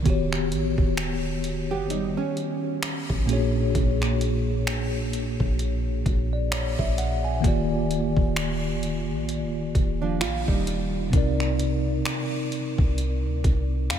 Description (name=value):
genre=contemporary R&B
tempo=65 BPM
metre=4/4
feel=swing 58% on 16ths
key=unclear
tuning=A4 = 441 Hz
part: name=bell-like tine electric piano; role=accompaniment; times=0.0-14.0 s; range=Bb2 to Ab5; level=-26 LUFS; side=left 1 dB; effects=medium stereo tremolo
part: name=warm 808-style bass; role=bass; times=0.0-14.0 s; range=Eb1 to G2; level=-28 LUFS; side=equal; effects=none
part: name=detuned 8-bit digital drum machine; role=drums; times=0.1-14.0 s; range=finger snaps, hi-hat, kick drum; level=-27 LUFS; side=equal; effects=none
part: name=nylon-string guitar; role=arpeggios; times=1.7-3.2, 10.0-11.1 s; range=F3 to G4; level=-31 LUFS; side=right 5 dB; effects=analog chorus, tape echo
room=moderate huge ambient reverb, RT60 5.0 s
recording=dreamy mix soaked in reverb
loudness=-22 LUFS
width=side -9 dB against mid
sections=0.0-14.0 A section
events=none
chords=0.1 Eb7alt; 3.3 Bb7alt; 7.4 Ebmaj9; 11.1 Cm7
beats=| 0.06 0.98 1.90 2.83 | 3.75 4.67 5.59 6.52 | 7.44 8.37 9.29 10.21 | 11.13 12.06 12.98 13.90